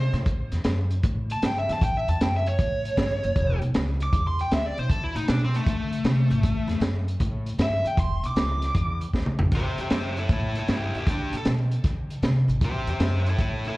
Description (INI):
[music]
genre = electric blues shuffle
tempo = 155 BPM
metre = 4/4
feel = swing 68% on 8ths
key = unclear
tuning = A4 = 440 Hz
[part]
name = biting lead guitar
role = melody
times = 0.0-13.8 s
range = A3 to D6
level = -29 LUFS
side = equal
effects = overdrive, plate reverb, slapback echo
[part]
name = upright bass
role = bass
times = 0.0-13.7 s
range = E1 to D3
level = -26 LUFS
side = equal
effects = none
[part]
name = crunchy breakbeat drum kit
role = drums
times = 0.1-13.7 s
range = crash cymbal, hi-hat, kick drum, snare drum, toms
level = -26 LUFS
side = equal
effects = none
[sound]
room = light reverb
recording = live gig heard through the venue's PA, club reverb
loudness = -22 LUFS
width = side -19 dB against mid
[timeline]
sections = 0.0-9.5 A section; 9.5-13.8 B section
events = lead electric guitar solo 0.0-9.5; drum fill 9.1-9.5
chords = 0.3 A7; 3.3 E5; 4.9 D5; 6.4 A5; 8.0 E7(no3); 9.5 A5; 11.1 D5; 12.6 A5